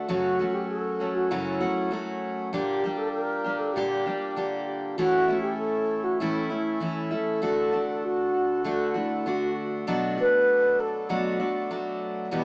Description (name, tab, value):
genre	acoustic folk duo or small band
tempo	98 BPM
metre	4/4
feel	straight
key	unclear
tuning	A4 = 438 Hz
part	picked steel-string acoustic guitar	accompaniment	0.0-12.4 s	E2 to G4	-28 LUFS	equal	none
part	pedal harmonium	sustained chords	0.0-12.4 s	D2 to A4	-34 LUFS	equal	none
part	mellow wooden-headed alto flute	melody	0.1-12.4 s	E4 to B4	-26 LUFS	equal	plate reverb
room	moderate studio reverb, RT60 0.6 s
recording	small speaker sound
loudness	-24 LUFS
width	side -32 dB against mid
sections	0.0-12.4 A section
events	none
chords	0.1 F#m; 2.5 Gm/Bb; 5.0 A; 7.4 D; 9.9 Bm7